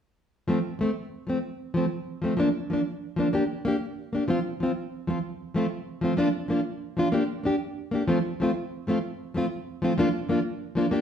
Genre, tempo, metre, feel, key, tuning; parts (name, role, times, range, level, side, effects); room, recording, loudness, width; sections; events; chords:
highlife; 126 BPM (dotted quarters); 12/8; straight; F major; A4 = 436 Hz
fingerpicked plugged-in old ladder-braced acoustic guitar; solo; 0.5-11.0 s; F3 to G4; -25 LUFS; equal
wet large studio reverb, RT60 1.1 s; band playing live in one room; -25 LUFS; side -8 dB against mid
0.5-8.1 A section; 8.1-11.0 B section
0.5 F; 2.4 Bb; 3.3 Gm; 4.3 F5; 6.2 Bb; 7.1 Gm; 8.1 F; 10.0 Bb